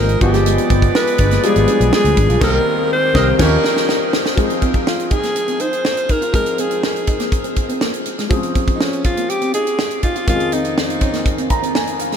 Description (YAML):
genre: polished 1980s jazz-funk pop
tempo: 122 BPM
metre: 4/4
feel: straight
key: F minor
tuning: A4 = 439 Hz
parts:
  - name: bright alto saxophone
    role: melody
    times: 0.0-11.5 s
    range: Db4 to C5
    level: -19 LUFS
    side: equal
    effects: diffuse ambient delay
  - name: warm baby grand piano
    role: accompaniment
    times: 0.0-12.2 s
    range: F2 to Bb5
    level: -20 LUFS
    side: left 2 dB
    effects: lush chorus
  - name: mellow electric guitar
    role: riff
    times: 0.0-12.2 s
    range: Ab3 to F4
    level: -27 LUFS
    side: right 2 dB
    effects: ensemble chorus
  - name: vintage muted fingered electric bass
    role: bass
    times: 0.0-3.6 s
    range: G1 to Eb2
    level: -16 LUFS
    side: equal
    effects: none
  - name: tight funk drum kit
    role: drums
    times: 0.1-12.2 s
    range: crash cymbal, hi-hat, kick drum, snare drum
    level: -20 LUFS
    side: right 1 dB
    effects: none
  - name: warm horn section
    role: second line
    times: 0.2-3.5 s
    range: Ab3 to Eb5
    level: -27 LUFS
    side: right 3 dB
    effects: none
room: moderate huge ambient reverb, RT60 8.3 s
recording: dreamy mix soaked in reverb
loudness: -14 LUFS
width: side -8 dB against mid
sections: 0.0-4.4 A section; 4.4-12.2 B section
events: band accent 2.4-4.4; drum fill 3.4-4.4; grand piano fill 11.3-12.2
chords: 0.2 G7b9; 2.4 Cm7; 3.4 Eb9; 4.4 Fm7; 8.3 Bbm11/F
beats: | 0.46 0.95 1.44 1.93 | 2.42 2.90 3.40 3.88 | 4.38 4.87 5.36 5.85 | 6.34 6.83 7.32 7.82 | 8.31 8.80 9.29 9.78 | 10.28 10.77 11.26 11.75